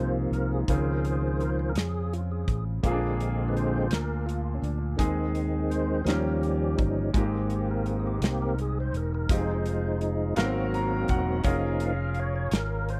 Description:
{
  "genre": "slow gospel",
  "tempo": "56 BPM (dotted quarters)",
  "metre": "6/8",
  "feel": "straight",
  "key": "Ab major",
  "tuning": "A4 = 440 Hz",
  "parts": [
    { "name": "clear baby grand piano", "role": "accompaniment", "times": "0.0-13.0 s", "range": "Ab2 to Bb5", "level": "-34 LUFS", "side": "equal", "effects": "none" },
    { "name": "tonewheel organ", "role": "sustained chords", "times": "0.0-13.0 s", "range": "C3 to F5", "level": "-33 LUFS", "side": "equal", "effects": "slow rotary speaker, overdrive, chorus vibrato" },
    { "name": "fingered electric bass", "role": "bass", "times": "0.0-13.0 s", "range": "Fb1 to F2", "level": "-32 LUFS", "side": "equal", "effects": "none" },
    { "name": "natural country drum kit", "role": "drums", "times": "0.3-13.0 s", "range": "hi-hat, kick drum, snare drum", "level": "-30 LUFS", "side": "equal", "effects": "none" }
  ],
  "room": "studio ambience",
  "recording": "dry, close 1970s-style studio recording",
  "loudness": "-27 LUFS",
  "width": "mono",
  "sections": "0.0-13.0 A section",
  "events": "tonewheel organ solo 0.0-13.0; grand piano fill 10.4-11.5",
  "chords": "0.0 Ab6; 0.7 Dbmaj7; 2.8 Bb7; 5.0 Ab/Eb; 6.1 Eb7; 7.2 Abmaj7; 9.3 Fm7; 10.4 Ab13; 11.5 Db6/F",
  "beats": "| 0.69 1.76 | 2.84 3.92 | 5.00 6.08 | 7.15 8.23 | 9.30 10.38 | 11.45 12.53"
}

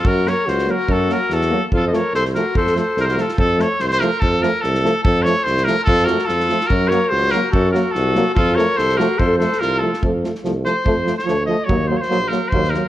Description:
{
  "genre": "balkan folk, Balkan brass band",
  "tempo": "145 BPM",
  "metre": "2/4",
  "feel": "swing 53% on 16ths",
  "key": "F phrygian dominant",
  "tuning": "A4 = 439 Hz",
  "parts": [
    { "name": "bright trumpet", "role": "melody", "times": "0.0-12.9 s", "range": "A4 to Eb5", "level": "-20 LUFS", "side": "equal", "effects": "none" },
    { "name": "clear alto saxophone", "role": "second line", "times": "0.0-3.4, 5.9-10.0 s", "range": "F4 to C5", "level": "-23 LUFS", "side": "left 3 dB", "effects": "none" },
    { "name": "warm tuba", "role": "bass", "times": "0.0-12.7 s", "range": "Bb1 to Gb2", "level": "-21 LUFS", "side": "equal", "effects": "none" },
    { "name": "natural country drum kit", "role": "percussion", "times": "0.1-12.8 s", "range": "kick drum, snare drum", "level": "-23 LUFS", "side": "equal", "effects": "none" },
    { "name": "clear euphonium", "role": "accompaniment", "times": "0.3-12.8 s", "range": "A3 to Bb3", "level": "-25 LUFS", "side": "left 3 dB", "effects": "none" },
    { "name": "clear trombone", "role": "accompaniment", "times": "0.3-12.8 s", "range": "F3 to Gb3", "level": "-26 LUFS", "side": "right 5 dB", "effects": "none" }
  ],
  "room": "light reverb",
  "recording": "worn, warbling old tape, cassette tape, warbly pitch drift",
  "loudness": "-15 LUFS",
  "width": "side -14 dB against mid",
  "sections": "0.0-3.4 A section; 3.4-10.0 A section; 10.0-12.9 B section",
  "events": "trumpet solo 10.0-12.9",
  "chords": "0.0 Gb; 1.7 F; 6.7 Gb; 8.4 F; 11.7 Ebm",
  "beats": "| 0.04 0.46 | 0.88 1.30 | 1.72 2.14 | 2.55 2.97 | 3.39 3.81 | 4.22 4.64 | 5.05 5.47 | 5.88 6.30 | 6.71 7.13 | 7.54 7.96 | 8.37 8.78 | 9.20 9.61 | 10.03 10.44 | 10.86 11.27 | 11.69 12.10 | 12.51"
}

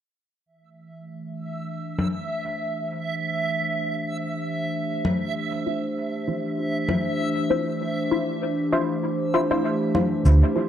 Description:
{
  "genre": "ambient dub",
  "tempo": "98 BPM",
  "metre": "4/4",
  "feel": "swing 56% on 16ths",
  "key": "D minor",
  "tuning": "A4 = 440 Hz",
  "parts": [
    { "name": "warbly tape-like pad", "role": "sustained chords", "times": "0.9-10.7 s", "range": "E3 to C5", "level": "-27 LUFS", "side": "equal", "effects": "chorus, built-in reverb" },
    { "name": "backwards swelling texture", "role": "texture", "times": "1.5-10.3 s", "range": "E5", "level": "-30 LUFS", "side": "right 2 dB", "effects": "built-in reverb" },
    { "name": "congas and cabasa", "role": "drums", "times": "2.0-10.4 s", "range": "none", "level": "-26 LUFS", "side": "left 2 dB", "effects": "overdrive, low-pass filter on perc, low-pass filter on room" },
    { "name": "filtered dub chord stab", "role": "stabs", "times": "5.7-10.7 s", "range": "E4 to C5", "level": "-26 LUFS", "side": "left 2 dB", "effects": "phaser, analog chorus, dub echo" },
    { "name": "hollow-body short-scale fingered electric bass", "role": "bass", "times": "10.3-10.4 s", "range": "D2", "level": "-14 LUFS", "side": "equal", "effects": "none" }
  ],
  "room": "moderate spring reverb, RT60 1.6 s, digital ambience",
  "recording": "none",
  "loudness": "-22 LUFS",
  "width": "side -10 dB against mid",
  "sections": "0.5-10.3 A section",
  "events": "filter sweep on ambient pad 0.5-10.3",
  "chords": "0.5 Dm9",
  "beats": "| 0.46 1.07 1.68 2.29 | 2.91 3.52 4.13 4.74 | 5.36 5.97 6.58 7.19 | 7.80 8.42 9.03 9.64 | 10.25"
}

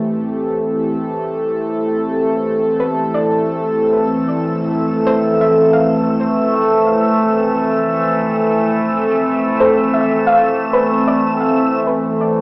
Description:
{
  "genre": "ambient",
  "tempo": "53 BPM",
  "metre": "4/4",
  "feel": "straight",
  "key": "unclear",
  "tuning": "A4 = 440 Hz",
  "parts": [
    { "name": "warm analog pad", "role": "sustained chords", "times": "0.0-12.4 s", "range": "E3 to A4", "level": "-16 LUFS", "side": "equal", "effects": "chorus, cassette tape" },
    { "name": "round analog bass", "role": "bass", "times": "0.0-11.8 s", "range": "F1 to A1", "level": "-40 LUFS", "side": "equal", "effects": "none" },
    { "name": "soft round pluck", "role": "arpeggios", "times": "2.8-12.4 s", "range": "A4 to F5", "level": "-18 LUFS", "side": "equal", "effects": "wide subtle chorus, cassette tape, analog delay" },
    { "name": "overtone-sweeping drone", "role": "drone", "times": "3.5-12.4 s", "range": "E3 to E4", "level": "-18 LUFS", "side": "equal", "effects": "chorus, built-in reverb, cassette tape" },
    { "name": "wind-like tuned noise texture", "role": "texture", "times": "3.4-12.4 s", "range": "E6", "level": "-25 LUFS", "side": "equal", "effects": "built-in reverb, cassette tape" }
  ],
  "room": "wet studio reverb, RT60 0.5 s",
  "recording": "home recording on cassette, small speaker sound",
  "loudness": "-13 LUFS",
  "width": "side -26 dB against mid",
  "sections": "0.0-11.9 A section",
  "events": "fade-in on synth pluck 0.0-11.9",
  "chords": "0.0 Am7; 2.8 Fmaj7; 11.9 Amadd9",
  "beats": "0.54 1.67 | 2.80 3.93 5.06 6.20 | 7.33 8.46 9.59 10.72 | 11.86"
}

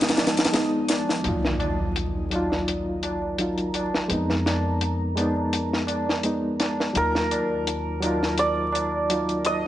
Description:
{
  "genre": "trip hop",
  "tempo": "84 BPM",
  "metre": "4/4",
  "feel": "swing 54% on 16ths",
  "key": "Eb harmonic minor",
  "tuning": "A4 = 440 Hz",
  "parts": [
    { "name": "santur", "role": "melody", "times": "0.0-0.8, 7.0-9.7 s", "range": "Bb4 to Eb5", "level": "-27 LUFS", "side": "right 1 dB", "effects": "tape echo" },
    { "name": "bright reed electric piano", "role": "accompaniment", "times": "0.0-9.7 s", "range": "Gb3 to F4", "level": "-27 LUFS", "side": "equal", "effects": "tremolo, low-pass filter, tape echo" },
    { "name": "deep dark ambient pad", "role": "sustained chords", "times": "0.0-9.7 s", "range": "F3 to Bb5", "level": "-35 LUFS", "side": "equal", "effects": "chorus, built-in reverb, vintage 12-bit sampler grit" },
    { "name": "deep reggae drum kit", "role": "drums", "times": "0.0-9.6 s", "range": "hi-hat, snare drum", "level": "-25 LUFS", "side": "left 1 dB", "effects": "low-pass filter on kick, small room reverb, low-pass filter on hats, low-pass filter on snare, low-pass filter on room" },
    { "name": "tabla", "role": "percussion", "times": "0.2-9.7 s", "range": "none", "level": "-32 LUFS", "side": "right 1 dB", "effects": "none" },
    { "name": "upright bass", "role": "bass", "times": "1.2-9.7 s", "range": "Eb2 to F2", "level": "-31 LUFS", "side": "equal", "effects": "tube saturation" },
    { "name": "impact", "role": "sound effects", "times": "1.2-4.1 s", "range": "none", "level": "-32 LUFS", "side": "equal", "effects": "none" }
  ],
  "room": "light reverb, small room ambience",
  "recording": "vinyl crackle, nothing above 10.7 kHz",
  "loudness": "-22 LUFS",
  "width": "side -13 dB against mid",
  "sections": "0.0-1.2 A section; 1.2-9.7 B section",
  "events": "break 0.0-1.2; impact 1.2-4.1",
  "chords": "0.0 Fm7b5; 1.2 Ebmadd9; 4.1 Fm7b5; 7.0 Ebmadd9",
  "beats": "0.53 | 1.24 1.96 2.67 3.38 | 4.10 4.81 5.53 6.24 | 6.96 7.67 8.38 9.10"
}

